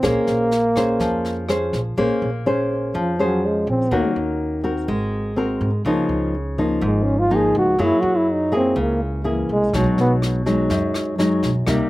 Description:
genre	bossa nova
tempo	124 BPM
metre	4/4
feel	straight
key	Bb minor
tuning	A4 = 440 Hz
part	breathy trombone	melody	0.0-10.1 s	Db3 to Ab4	-20 LUFS	equal	slapback echo
part	nylon-string guitar	accompaniment	0.0-11.9 s	F#2 to C5	-20 LUFS	left 1 dB	slapback echo
part	upright bass	bass	0.0-11.8 s	Ab1 to Ab2	-26 LUFS	equal	none
part	jazz brush drum kit	drums	0.0-1.8, 9.7-11.8 s	kick drum, rim click, snare drum	-30 LUFS	equal	none
room	little or no reverb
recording	recorded outdoors, with no room sound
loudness	-18 LUFS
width	side -18 dB against mid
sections	0.0-2.0 A section; 2.0-11.9 B section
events	trombone solo 2.0-11.9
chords	0.0 Bbm9; 3.9 Ebm7; 4.9 Ab9; 5.9 Db69; 7.8 Gb9; 9.7 B6

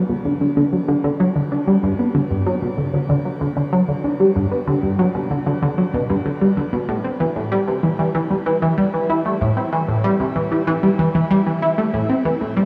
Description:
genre	ambient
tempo	95 BPM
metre	4/4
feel	straight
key	unclear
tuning	A4 = 438 Hz
part	tight sequenced synth	solo	0.0-12.7 s	G2 to E4	-19 LUFS	equal	chorus, phaser, tape echo
room	wet shimmer reverb, RT60 8.1 s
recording	small room ambience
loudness	-19 LUFS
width	mono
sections	0.0-12.7 A section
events	none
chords	none

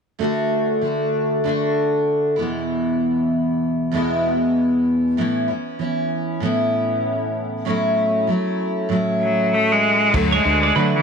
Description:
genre	acoustic pop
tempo	97 BPM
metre	4/4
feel	swing 60% on 16ths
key	unclear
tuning	A4 = 440 Hz
part	picked steel-string acoustic guitar	accompaniment	0.2-11.0 s	E2 to F#4	-19 LUFS	equal	double-tracked left and right
part	rich cello	melody	9.2-11.0 s	E3 to A3	-17 LUFS	equal	none
part	woody fretless electric bass	bass	10.1-11.0 s	D2 to D3	-22 LUFS	right 1 dB	none
part	unplugged drum kit	drums	10.1-10.3 s	crash cymbal, kick drum	-26 LUFS	left 3 dB	none
part	twelve-string electric guitar	arpeggios	10.3-10.9 s	B4 to D5	-23 LUFS	right 13 dB	none
room	light reverb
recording	1960s-style stereo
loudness	-17 LUFS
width	side -6 dB against mid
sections	0.2-10.1 A section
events	none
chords	0.2 D; 2.4 E; 5.2 Aadd9; 7.7 F#m7/A; 10.1 D

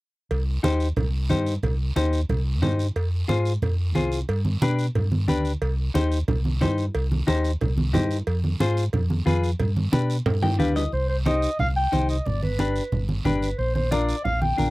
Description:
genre	latin, cumbia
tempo	181 BPM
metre	4/4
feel	straight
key	C harmonic minor, C minor from 10.9 s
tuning	A4 = 440 Hz
part	fingered electric bass	bass	0.3-14.7 s	G1 to B2	-24 LUFS	equal	none
part	congas	percussion	0.3-14.7 s	none	-26 LUFS	right 2 dB	none
part	cowbell and timbales	percussion	0.3-10.8 s	none	-31 LUFS	right 3 dB	none
part	guiro	percussion	0.3-14.7 s	none	-41 LUFS	right 5 dB	none
part	semi-hollow electric guitar	accompaniment	0.6-14.7 s	D4 to G5	-25 LUFS	left 3 dB	none
part	mellow clarinet	melody	10.8-14.7 s	B4 to G5	-26 LUFS	equal	none
room	light reverb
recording	dry, close 1970s-style studio recording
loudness	-21 LUFS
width	side -20 dB against mid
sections	0.3-10.9 A section; 10.9-14.7 B section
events	drum fill 10.3-10.9; clean electric guitar fill 10.3-10.9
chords	0.3 Cm; 3.0 Fm; 4.3 G; 5.6 Cm; 8.3 Fm; 9.6 G; 10.9 Cm; 12.3 G; 13.6 Bb

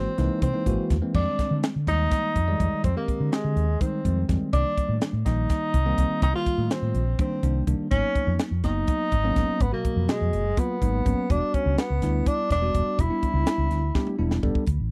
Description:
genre	electric jazz fusion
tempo	248 BPM (eighths)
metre	7/8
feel	straight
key	unclear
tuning	A4 = 441 Hz
part	warm tenor saxophone	melody	0.0-14.2 s	Ab3 to F4	-30 LUFS	equal	none
part	bell-like tine electric piano	accompaniment	0.0-14.6 s	Cb3 to D5	-31 LUFS	equal	none
part	woody fretless electric bass	bass	0.0-14.9 s	E1 to D3	-28 LUFS	equal	none
part	crisp fusion drum kit	drums	0.2-14.8 s	crash cymbal, hi-hat, kick drum, snare drum, toms	-28 LUFS	equal	none
room	little or no reverb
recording	dry, close 1970s-style studio recording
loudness	-24 LUFS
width	mono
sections	0.0-1.1 A section; 1.1-14.7 B section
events	drum fill 14.0-14.7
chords	0.0 C7alt; 1.1 Fm9; 4.5 Cm9; 7.9 Abm9; 11.3 Em9

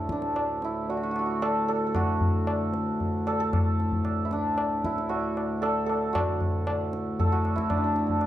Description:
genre	indian classical, Hindustani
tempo	114 BPM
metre	4/4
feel	straight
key	unclear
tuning	A4 = 438 Hz
part	santur	melody	0.0-8.3 s	D4 to A4	-28 LUFS	right 2 dB	none
part	pedal harmonium	drone	0.0-8.3 s	D2 to A2	-31 LUFS	left 1 dB	none
part	tabla	percussion	0.1-8.3 s	none	-29 LUFS	left 1 dB	none
room	moderate recital hall reverb, RT60 1.4 s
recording	dark, warm production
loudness	-24 LUFS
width	side -13 dB against mid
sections	0.0-6.1 A section; 6.1-8.3 B section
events	speeding up 0.0-8.3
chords	none

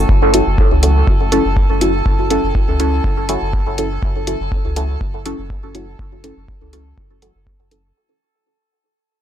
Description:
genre	dub techno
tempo	122 BPM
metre	4/4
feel	straight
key	F# minor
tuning	A4 = 440 Hz
part	warm sub bass	bass	0.0-7.9 s	F#1 to C#2	-19 LUFS	equal	sidechain pumping
part	metallic inharmonic drone	texture	0.0-8.0 s	A4	-25 LUFS	equal	chorus, built-in reverb, sidechain pumping
part	electronic kick drum	drums	0.1-7.6 s	none	-17 LUFS	equal	overdrive
part	deep mellow chord stab	stabs	0.3-7.8 s	C#4 to A4	-19 LUFS	equal	chorus, phaser, sidechain pumping, dub echo
part	electronic hi-hat	drums	0.3-7.8 s	none	-22 LUFS	equal	overdrive
room	little or no reverb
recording	dark, warm production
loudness	-13 LUFS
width	side -10 dB against mid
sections	0.1-8.0 A section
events	fade-out 0.1-8.0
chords	0.1 F#m7

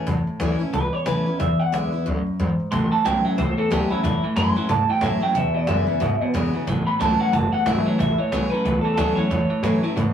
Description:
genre	rockabilly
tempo	182 BPM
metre	4/4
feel	swing 60% on 8ths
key	A major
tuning	A4 = 440 Hz
part	picked steel-string acoustic guitar	accompaniment	0.0-10.1 s	E2 to E4	-26 LUFS	left 2 dB	none
part	upright bass	bass	0.1-10.1 s	F#1 to A2	-25 LUFS	equal	none
part	cajon	drums	0.1-10.1 s	none	-32 LUFS	equal	none
part	electric guitar through a small old amp	melody	0.7-9.8 s	E4 to C6	-23 LUFS	right 1 dB	none
part	clean electric guitar	riff	2.7-10.1 s	E2 to F#3	-24 LUFS	right 1 dB	none
room	wet studio ambience, RT60 0.5 s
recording	rough rehearsal-room recording, small room ambience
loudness	-19 LUFS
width	side -9 dB against mid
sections	0.0-8.0 A section; 8.0-10.1 B section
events	clean electric guitar solo 0.0-8.0; kick and snare drop out 2.1-2.7, 7.8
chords	0.0 A; 1.4 E7; 2.7 A; 5.4 E7; 6.7 A

